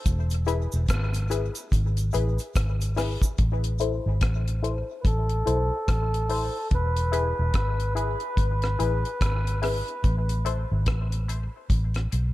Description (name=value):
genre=dub reggae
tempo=72 BPM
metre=4/4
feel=swing 60% on 16ths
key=A harmonic minor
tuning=A4 = 438 Hz
part: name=vintage muted fingered electric bass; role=bass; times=0.1-12.3 s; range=E1 to B1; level=-25 LUFS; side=equal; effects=none
part: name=deep reggae drum kit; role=drums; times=0.1-12.3 s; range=hi-hat, kick drum, rim click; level=-26 LUFS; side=equal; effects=none
part: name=cabasa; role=percussion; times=0.1-3.4 s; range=none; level=-42 LUFS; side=right 5 dB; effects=tape echo
part: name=filtered dub chord stab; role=stabs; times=0.5-12.3 s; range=E4 to C5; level=-32 LUFS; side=left 5 dB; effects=chorus, high-pass filter, low-pass filter, tape echo
part: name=melodica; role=melody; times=5.0-9.6 s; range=A4 to B4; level=-31 LUFS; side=equal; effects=low-pass filter, tape echo
room=light reverb, small room ambience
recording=none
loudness=-23 LUFS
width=side -16 dB against mid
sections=0.0-3.4 A section; 3.4-12.3 B section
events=break 0.0-3.4; filter sweep 3.4-12.3; filter sweep on synth stab 6.7-12.3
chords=0.1 E; 3.4 Am; 6.7 E; 10.0 Am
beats=| 0.06 0.89 1.72 2.55 | 3.39 4.22 5.05 5.88 | 6.71 7.55 8.38 9.21 | 10.04 10.88 11.71